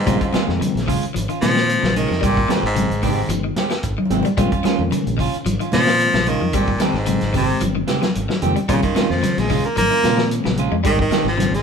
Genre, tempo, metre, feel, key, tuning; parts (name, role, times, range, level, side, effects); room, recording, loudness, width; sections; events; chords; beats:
afrobeat; 111 BPM; 4/4; swing 53% on 16ths; Bb dorian; A4 = 440 Hz
bright baritone saxophone; melody; 0.0-11.6 s; F2 to Bb3; -20 LUFS; equal
electric guitar at the edge of break-up; arpeggios; 0.0-11.6 s; Db3 to Ab3; -26 LUFS; left 5 dB; spring reverb
tine electric piano; accompaniment; 0.1-11.5 s; Bb2 to Eb4; -24 LUFS; equal; overdrive, medium stereo tremolo
clean electric guitar; stabs; 0.1-11.3 s; Eb3 to G4; -25 LUFS; right 6 dB
fingered electric bass; bass; 0.1-11.6 s; G1 to Bb2; -24 LUFS; equal
vintage drum kit; drums; 0.1-11.6 s; hi-hat, kick drum, snare drum; -25 LUFS; equal
congas; percussion; 0.1-11.5 s; -25 LUFS; equal
moderate studio reverb, RT60 0.9 s; band playing live in one room; -16 LUFS; side -6 dB against mid
0.0-11.6 A section
baritone saxophone solo 0.0-11.6; drum fill 4.0-4.4
0.1 Bbm7; 2.2 Abmaj7; 4.4 Bbm7; 6.5 Abmaj7; 8.7 Bbm7; 10.8 Abmaj7
| 0.07 0.60 1.14 1.68 | 2.22 2.76 3.30 3.84 | 4.38 4.92 5.46 6.00 | 6.54 7.07 7.61 8.15 | 8.69 9.23 9.77 10.31 | 10.85 11.39